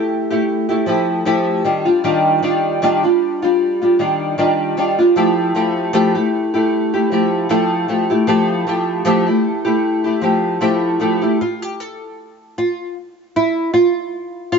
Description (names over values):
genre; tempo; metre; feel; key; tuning
indie pop; 77 BPM; 4/4; swing 55% on 16ths; F major; A4 = 440 Hz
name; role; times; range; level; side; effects
nylon-string guitar; solo; 0.0-14.6 s; Eb3 to A4; -14 LUFS; equal; analog chorus, warbly pitch drift
room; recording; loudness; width
light reverb; dark, warm production, nothing above 7.8 kHz; -14 LUFS; side -5 dB against mid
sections
0.0-11.4 A section; 11.4-14.6 B section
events
nylon-string guitar solo 11.4-14.6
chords
0.0 Fmaj9; 1.7 Ebmaj9; 5.2 Fmaj9; 11.4 N.C.